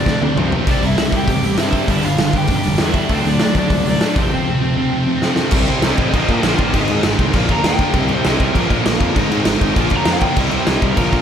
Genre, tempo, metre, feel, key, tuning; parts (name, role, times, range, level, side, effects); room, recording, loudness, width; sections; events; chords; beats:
punk rock; 198 BPM; 4/4; straight; A4 = 439 Hz
raw garage guitar; melody; 0.0-11.1 s; C4 to Bb5; -23 LUFS; equal; overdrive, slapback echo
distorted electric guitar; riff; 0.0-11.2 s; F2 to D4; -22 LUFS; right 8 dB; distortion, slapback echo
sludgy distorted guitar; riff; 0.0-11.2 s; F2 to F4; -22 LUFS; left 9 dB; overdrive
tight distorted guitar; riff; 0.0-11.2 s; F2 to F4; -23 LUFS; equal; distortion, slapback echo
fuzz picked electric bass; bass; 0.1-11.2 s; F1 to Bb2; -22 LUFS; equal; overdrive
raw garage drum kit; drums; 0.1-11.2 s; crash cymbal, hi-hat, kick drum, snare drum, toms; -18 LUFS; equal
moderate recital hall reverb, RT60 1.6 s, studio ambience; big arena sound; -14 LUFS; side -8 dB against mid
0.0-5.5 A section; 5.5-11.2 B section
drum fill 0.1-0.7, 5.2-5.5; overdriven electric guitar solo 5.5-11.2
0.0 F; 0.7 C; 1.9 G; 3.1 D; 4.2 F; 5.5 C; 6.1 Bb; 6.7 Ab; 7.3 Bb; 7.9 C; 8.6 Bb; 9.2 Ab; 9.8 Bb; 10.4 C
0.06 0.36 | 0.67 0.97 1.27 1.58 | 1.88 2.19 2.49 2.79 | 3.10 3.40 3.71 4.01 | 4.31 4.62 4.92 5.22 | 5.53 5.83 6.13 6.43 | 6.74 7.04 7.34 7.65 | 7.95 8.25 8.55 8.86 | 9.16 9.46 9.76 10.07 | 10.37 10.67 10.97